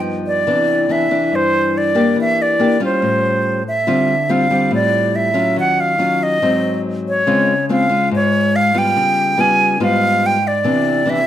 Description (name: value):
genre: bossa nova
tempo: 142 BPM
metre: 4/4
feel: straight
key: unclear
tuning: A4 = 440 Hz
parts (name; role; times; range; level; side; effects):
- nylon-string guitar; accompaniment; 0.0-11.3 s; G2 to G4; -17 LUFS; left 2 dB; none
- breathy silver concert flute; melody; 0.3-11.3 s; C5 to Ab5; -16 LUFS; right 1 dB; none
room: moderate studio reverb, RT60 1.0 s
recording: none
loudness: -13 LUFS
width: side -11 dB against mid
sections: 0.5-11.3 A section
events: none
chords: 0.5 Cmaj9; 2.2 Em7b5; 3.0 A7alt; 3.9 Dm11; 5.6 Ebm9; 6.4 Ab7; 7.3 Dbmaj7; 8.9 Db7#11; 10.6 Cmaj9